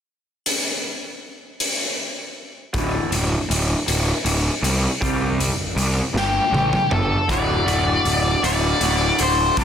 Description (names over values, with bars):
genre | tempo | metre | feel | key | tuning
quiet-loud alternative rock | 53 BPM (dotted quarters) | 6/8 | straight | D mixolydian | A4 = 440 Hz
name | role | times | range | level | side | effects
raw garage drum kit | drums | 0.5-9.6 s | hi-hat, kick drum, snare drum, toms | -23 LUFS | equal | none
electric guitar through a small old amp | arpeggios | 2.7-9.6 s | D2 to G4 | -25 LUFS | left 1 dB | none
fuzz picked electric bass | bass | 2.7-9.6 s | D1 to C2 | -22 LUFS | equal | overdrive
octave-fuzz lead guitar | melody | 6.2-9.6 s | G4 to D5 | -21 LUFS | left 2 dB | distortion
room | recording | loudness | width
light reverb, small room ambience | dense, heavily limited modern master | -18 LUFS | side -8 dB against mid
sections
0.5-2.7 A section; 2.7-7.3 B section; 7.3-9.6 C section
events
drum fill 6.2-7.3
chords
0.5 N.C.; 2.7 D5; 5.0 C5; 7.3 D